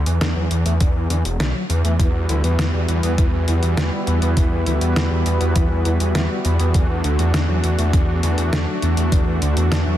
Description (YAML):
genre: synthwave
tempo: 101 BPM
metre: 4/4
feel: straight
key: E minor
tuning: A4 = 441 Hz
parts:
  - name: wide detuned saw bass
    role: bass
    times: 0.0-10.0 s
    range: E1 to E2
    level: -18 LUFS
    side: equal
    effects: chorus
  - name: detuned 8-bit digital drum machine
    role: drums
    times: 0.1-9.8 s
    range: hi-hat, snare drum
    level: -26 LUFS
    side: equal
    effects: overdrive
  - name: clean electric guitar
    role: riff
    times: 0.2-9.9 s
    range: D3 to B3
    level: -29 LUFS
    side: left 1 dB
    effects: analog chorus, ping-pong delay
  - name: electronic kick drum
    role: drums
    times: 0.8-9.2 s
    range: none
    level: -18 LUFS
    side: equal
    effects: overdrive
  - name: brassy analog pad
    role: sustained chords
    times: 2.0-10.0 s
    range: G3 to B4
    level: -24 LUFS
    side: right 1 dB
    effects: chorus, sidechain pumping
room: light reverb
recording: dense, heavily limited modern master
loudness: -16 LUFS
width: side -12 dB against mid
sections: 0.0-10.0 A section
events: none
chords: 0.0 N.C.; 2.0 Emadd9; 6.7 D